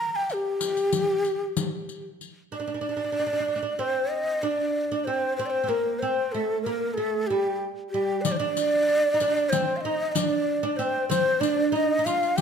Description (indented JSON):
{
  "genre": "Turkish makam ensemble",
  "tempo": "188 BPM (eighths)",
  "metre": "9/8",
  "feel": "straight",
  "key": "unclear",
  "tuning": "A4 = 442 Hz",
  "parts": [
    { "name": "breathy mellow ney", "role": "melody", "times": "0.0-12.4 s", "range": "G4 to Bb5", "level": "-25 LUFS", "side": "equal", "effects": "none" },
    { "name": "riq", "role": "percussion", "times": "0.3-2.3, 8.2-12.4 s", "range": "none", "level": "-30 LUFS", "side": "left 6 dB", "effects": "none" },
    { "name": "oud", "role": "second line", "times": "2.5-12.4 s", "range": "G3 to G4", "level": "-28 LUFS", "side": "right 2 dB", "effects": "none" }
  ],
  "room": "moderate recital hall reverb, RT60 1.3 s",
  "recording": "none",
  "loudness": "-23 LUFS",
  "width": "side -7 dB against mid",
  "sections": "0.0-2.5 A section; 2.5-12.4 B section",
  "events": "none",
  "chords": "none",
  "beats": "0.29 0.61 0.93 1.25 1.57 1.89 2.20 | 2.52 2.84 3.16 3.48 3.80 4.12 4.43 4.75 5.07 | 5.39 5.71 6.03 6.35 6.66 6.98 7.30 7.62 7.94 | 8.26 8.57 8.89 9.21 9.53 9.85 10.17 10.48 10.80 | 11.12 11.44 11.76 12.07 12.39"
}